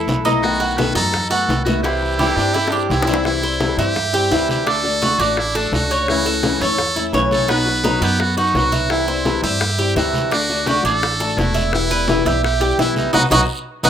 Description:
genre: latin, Cuban son and guajira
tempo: 170 BPM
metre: 4/4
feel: straight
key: unclear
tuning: A4 = 440 Hz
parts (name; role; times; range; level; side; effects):
- bright trumpet; second line; 0.0-3.2 s; C4 to E4; -27 LUFS; right 3 dB; plate reverb
- flamenco guitar; accompaniment; 0.0-13.9 s; B2 to F#4; -22 LUFS; left 4 dB; plate reverb
- Cuban tres; arpeggios; 0.0-13.9 s; B3 to E5; -20 LUFS; right 3 dB; plate reverb
- upright bass; bass; 0.0-13.9 s; E1 to G2; -24 LUFS; right 1 dB; none
- bongos; percussion; 0.1-13.9 s; none; -26 LUFS; left 3 dB; none
- congas; percussion; 0.1-13.9 s; none; -26 LUFS; equal; none
- guiro; percussion; 0.1-13.9 s; none; -33 LUFS; right 4 dB; none
- trumpet with metal mute; melody; 0.4-13.9 s; D4 to B4; -21 LUFS; right 1 dB; none
room: moderate studio reverb, RT60 0.6 s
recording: rough home demo mix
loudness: -15 LUFS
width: side -9 dB against mid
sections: 0.0-3.3 A section; 3.3-13.9 B section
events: drum fill 2.5-3.3, 13.5-13.9; band accent 13.1-13.9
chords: 0.4 B7; 1.8 C; 4.7 D; 6.1 A/C#; 7.5 B; 8.9 C; 10.3 D; 11.7 Em; 13.1 B

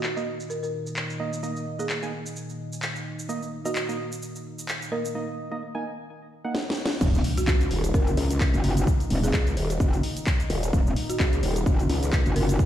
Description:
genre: bass house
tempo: 129 BPM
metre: 4/4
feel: swing 57% on 16ths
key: Eb minor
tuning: A4 = 440 Hz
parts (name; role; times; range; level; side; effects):
- folk marimba with medium hard mallets; melody; 0.0-12.7 s; Gb4 to Bb4; -34 LUFS; right 1 dB; ping-pong delay
- sweeping resonant pad; sustained chords; 0.0-12.7 s; Bb2 to Eb4; -36 LUFS; left 1 dB; chorus, vintage 12-bit sampler grit, sidechain pumping
- house drum kit; drums; 0.0-12.7 s; cabasa, crash cymbal, handclaps, hi-hat, snare drum; -32 LUFS; equal; low-pass filter on perc, low-pass filter on snare, low-pass filter on cymbals, low-pass filter on hats, low-pass filter on room
- deep dark ambient pad; texture; 0.0-5.2 s; Eb4 to Eb5; -40 LUFS; right 1 dB; chorus, built-in reverb, sidechain pumping
- percussive organ stab; stabs; 0.2-7.0 s; Bb3 to Ab5; -33 LUFS; right 3 dB; chorus, sidechain pumping, ping-pong delay
- metallic wobble bass; bass; 7.0-12.6 s; Eb1 to Gb1; -24 LUFS; equal; chorus, overdrive, sidechain pumping
- electronic kick drum; drums; 7.0-12.7 s; none; -23 LUFS; equal; none
- impact; sound effects; 7.0-8.9 s; none; -30 LUFS; equal; none
- growl bass; bass; 7.5-12.2 s; Eb1 to Db2; -26 LUFS; equal; chorus, tube saturation, sidechain pumping
room: light reverb, digital ambience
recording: played on a big sound system in a bare room, stone room reverb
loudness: -24 LUFS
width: side -12 dB against mid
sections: 0.0-7.0 A section; 7.0-12.7 B section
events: filter sweep on drum 0.0-7.0; drum fill 6.5-7.0; drop 7.0-12.7; impact 7.0-8.9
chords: 0.0 Eb5

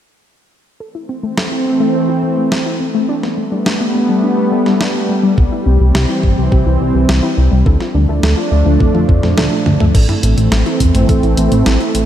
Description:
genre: synthwave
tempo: 105 BPM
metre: 4/4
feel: straight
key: A minor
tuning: A4 = 438 Hz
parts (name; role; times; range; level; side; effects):
- lush unison pad; sustained chords; 1.3-12.1 s; E3 to D4; -16 LUFS; right 1 dB; chorus, sidechain pumping
- warbly dusty pluck; arpeggios; 0.8-12.1 s; G3 to A4; -20 LUFS; left 3 dB; chorus, diffuse ambient delay
- clean 12-bit digital drum machine; drums; 1.4-12.1 s; crash cymbal, hi-hat, snare drum, toms; -20 LUFS; equal; none
- chorused synth bass; bass; 5.4-12.1 s; G1 to F2; -13 LUFS; equal; none
- electronic kick drum; drums; 5.4-11.2 s; none; -13 LUFS; equal; none
room: light reverb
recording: none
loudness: -11 LUFS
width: side -10 dB against mid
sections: 0.8-9.9 A section; 9.9-12.1 B section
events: filter sweep on synth arpeggio sound 0.8-9.9; drum fill 8.8-9.9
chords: 0.8 Am; 3.1 Gadd9; 5.4 C; 7.7 Dm; 9.9 Am

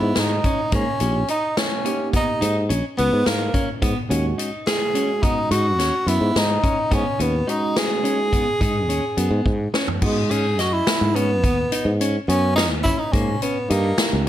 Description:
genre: progressive instrumental, band music in an uneven meter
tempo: 213 BPM (eighths)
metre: 11/8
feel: straight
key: G# minor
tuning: A4 = 440 Hz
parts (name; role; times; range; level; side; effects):
- breathy tenor saxophone; melody; 0.0-14.2 s; G#3 to G#4; -22 LUFS; equal; none
- clean electric guitar; arpeggios; 0.0-14.0 s; A#3 to D#5; -27 LUFS; left 1 dB; none
- fretless electric bass; bass; 0.0-14.3 s; A#1 to G#2; -22 LUFS; equal; none
- swinging big-band drum kit; drums; 0.2-14.3 s; crash cymbal, hi-hat, kick drum, snare drum, toms; -24 LUFS; left 1 dB; none
- bright tine electric piano; accompaniment; 1.0-14.3 s; G#3 to G4; -28 LUFS; right 2 dB; medium stereo tremolo
room: moderate studio reverb, RT60 0.8 s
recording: none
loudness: -18 LUFS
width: side -12 dB against mid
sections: 0.0-10.0 A section; 10.0-14.3 B section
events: drum fill 9.5-10.0; tenor saxophone solo 10.0-14.3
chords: 0.0 G#m; 0.7 D#; 3.8 G#m7; 13.1 D#

